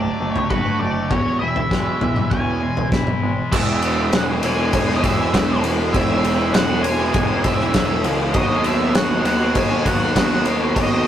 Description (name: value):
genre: quiet-loud alternative rock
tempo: 100 BPM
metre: 4/4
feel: straight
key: E major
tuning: A4 = 440 Hz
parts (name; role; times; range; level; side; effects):
- octave-fuzz lead guitar; melody; 0.0-11.1 s; B4 to G#5; -25 LUFS; right 1 dB; distortion
- twangy electric guitar; arpeggios; 0.0-3.5 s; E2 to F#4; -27 LUFS; left 3 dB; none
- crunchy overdriven guitar; riff; 0.0-11.1 s; E2 to F#4; -25 LUFS; right 4 dB; none
- thick fuzz guitar; riff; 0.0-11.1 s; D#3 to F#4; -27 LUFS; left 4 dB; distortion
- growling picked electric bass; bass; 0.0-11.0 s; E1 to D#2; -26 LUFS; equal; overdrive
- loose indie drum kit; drums; 0.4-10.9 s; crash cymbal, kick drum, ride cymbal, snare drum, toms; -20 LUFS; left 1 dB; none
- raw garage guitar; riff; 3.5-11.1 s; E2 to B3; -26 LUFS; right 1 dB; none
room: moderate studio ambience, RT60 0.5 s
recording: rough rehearsal-room recording, faint mains hum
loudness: -16 LUFS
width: side -10 dB against mid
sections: 0.0-3.5 A section; 3.5-11.1 B section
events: lead electric guitar solo 0.0-3.5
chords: 0.0 D/F#; 1.1 E6; 8.3 B/D#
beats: 0.50 | 1.11 1.71 2.32 2.92 | 3.52 4.13 4.73 5.33 | 5.94 6.54 7.14 7.75 | 8.35 8.95 9.55 10.16 | 10.76